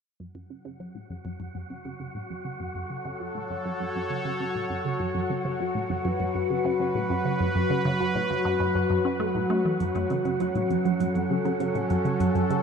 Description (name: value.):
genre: ambient, sequencer-driven space music.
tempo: 100 BPM.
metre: 4/4.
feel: straight.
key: F# minor.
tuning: A4 = 439 Hz.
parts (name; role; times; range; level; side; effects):
sweeping resonant pad; sustained chords; 0.2-12.6 s; F#3 to F#5; -27 LUFS; equal; chorus.
resonant blip pluck; riff; 0.2-12.6 s; F#2 to C#4; -29 LUFS; right 1 dB; chorus, phaser, ping-pong delay.
wind-like tuned noise texture; texture; 1.3-12.6 s; F#4 to F#5; -33 LUFS; left 3 dB; built-in reverb.
electronic hi-hat and woodblock; percussion; 9.8-12.6 s; none; -54 LUFS; equal; ping-pong delay.
room: moderate huge ambient reverb, RT60 8.6 s.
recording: in a vast, echoing space.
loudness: -24 LUFS.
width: side -6 dB against mid.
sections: 0.2-9.8 A section; 9.8-12.6 B section.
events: fade-in on synth arpeggio sound 0.2-9.8; fade-in on analog synth pad 0.2-9.8.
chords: 0.2 F#m.